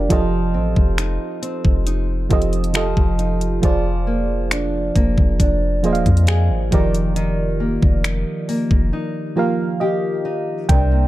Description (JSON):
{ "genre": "contemporary R&B", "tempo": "68 BPM", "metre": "4/4", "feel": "straight", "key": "unclear", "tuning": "A4 = 440 Hz", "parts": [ { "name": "mellow FM electric piano", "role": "accompaniment", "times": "0.0-11.1 s", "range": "F3 to G5", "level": "-23 LUFS", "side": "right 4 dB", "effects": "chorus" }, { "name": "nylon-string guitar", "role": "arpeggios", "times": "0.0-11.1 s", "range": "C3 to Ab4", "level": "-24 LUFS", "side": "left 2 dB", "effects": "tape echo" }, { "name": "soft 808-style bass", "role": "bass", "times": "0.0-11.1 s", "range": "Eb1 to F2", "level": "-20 LUFS", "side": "equal", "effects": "none" }, { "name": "smooth R&B drum kit", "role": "drums", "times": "0.1-10.9 s", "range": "finger snaps, hi-hat, kick drum", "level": "-18 LUFS", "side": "equal", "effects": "none" } ], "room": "little or no reverb", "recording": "dark, warm production", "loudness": "-16 LUFS", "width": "side -15 dB against mid", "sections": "0.0-10.7 A section", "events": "break 8.9-10.7", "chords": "0.1 F7; 3.6 Bb7/F; 6.7 Ebmaj7/F", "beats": "| 0.10 0.98 1.87 2.75 | 3.63 4.51 5.40 6.28 | 7.16 8.04 8.93 9.81 | 10.69" }